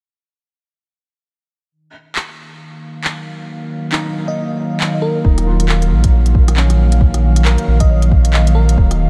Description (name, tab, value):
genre	future garage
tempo	136 BPM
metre	4/4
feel	swing 61% on 16ths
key	Eb minor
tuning	A4 = 441 Hz
part	airy breathy pad	sustained chords	2.7-9.1 s	Eb3 to F5	-22 LUFS	equal	chorus, sidechain pumping
part	organic electronic drum kit	drums	2.2-9.0 s	handclaps, hi-hat, rim click	-26 LUFS	equal	none
part	felt-muted upright piano	accompaniment	3.9-9.1 s	Db4 to Eb5	-30 LUFS	equal	vintage 12-bit sampler grit, sidechain pumping, tape echo
part	bell-like FM electric piano	melody	4.3-8.9 s	Bb4 to Eb5	-28 LUFS	equal	chorus, phaser, analog delay
part	warm sub bass	bass	5.2-9.1 s	Eb1 to Bb1	-15 LUFS	equal	none
part	electronic kick drum	drums	5.2-8.9 s	none	-15 LUFS	equal	none
room	light reverb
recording	none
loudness	-14 LUFS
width	mono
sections	1.7-5.2 A section; 5.2-9.1 B section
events	fade-in on analog synth pad 1.7-5.2; kick drops out 3.5-5.2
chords	1.7 Ebmadd9; 5.2 Ebm9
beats	| 1.72 2.16 2.60 3.04 | 3.48 3.92 4.37 4.81 | 5.25 5.69 6.13 6.57 | 7.01 7.45 7.89 8.34 | 8.78